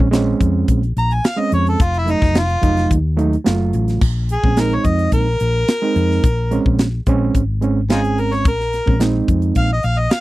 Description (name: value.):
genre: straight-eighth soul blues.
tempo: 108 BPM.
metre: 4/4.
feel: straight.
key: Bb minor.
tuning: A4 = 440 Hz.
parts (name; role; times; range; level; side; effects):
overdriven reed electric piano; accompaniment; 0.0-9.7 s; Gb3 to F4; -19 LUFS; right 4 dB; none.
hollow-body short-scale fingered electric bass; bass; 0.0-10.1 s; F1 to F2; -18 LUFS; left 1 dB; none.
tight funk drum kit; drums; 0.0-10.2 s; crash cymbal, hi-hat, kick drum, snare drum; -17 LUFS; equal; none.
warm harmonica; melody; 1.0-10.2 s; Eb4 to Bb5; -20 LUFS; equal; overdrive.
room: little or no reverb.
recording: dry, close 1970s-style studio recording.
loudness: -14 LUFS.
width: side -17 dB against mid.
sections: 0.0-4.0 A section; 4.0-10.2 A section.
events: harmonica solo 0.0-4.0, 4.0-10.2.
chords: 0.0 Bbm9; 1.8 F7b9; 4.0 Bbm9.